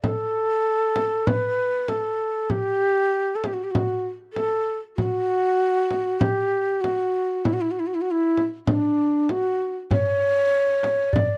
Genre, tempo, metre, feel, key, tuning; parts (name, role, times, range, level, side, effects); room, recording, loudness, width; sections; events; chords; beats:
Arabic maqam ensemble; 97 BPM; 4/4; straight; A4 = 440 Hz
breathy mellow ney; melody; 0.0-11.4 s; D4 to D5; -24 LUFS; equal
frame drum; percussion; 0.0-11.3 s; -28 LUFS; equal
darbuka; percussion; 9.9-11.3 s; -29 LUFS; equal
studio reverb; dry, close 1970s-style studio recording; -23 LUFS; mono
0.0-11.4 A section
| 0.04 0.66 1.27 1.89 | 2.51 3.13 3.74 4.36 | 4.98 5.60 6.21 6.83 | 7.45 8.07 8.68 9.30 | 9.92 10.53 11.15